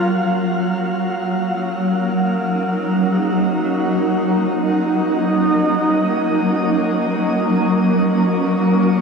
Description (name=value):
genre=ambient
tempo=free time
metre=none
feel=none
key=unclear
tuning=A4 = 440 Hz
part: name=bright alto flute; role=melody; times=0.0-6.5 s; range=Eb4 to Bb4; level=-25 LUFS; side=equal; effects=tape echo
part: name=granular cloud pad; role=sustained chords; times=0.0-9.0 s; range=Gb3 to F5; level=-16 LUFS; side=equal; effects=built-in reverb
room=wet shimmer reverb, RT60 8.3 s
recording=worn, warbling old tape, cassette tape, warbly pitch drift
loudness=-16 LUFS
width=side -5 dB against mid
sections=0.2-9.0 A section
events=fade-in on alto flute 0.2-9.0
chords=0.0 Gbmaj7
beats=free time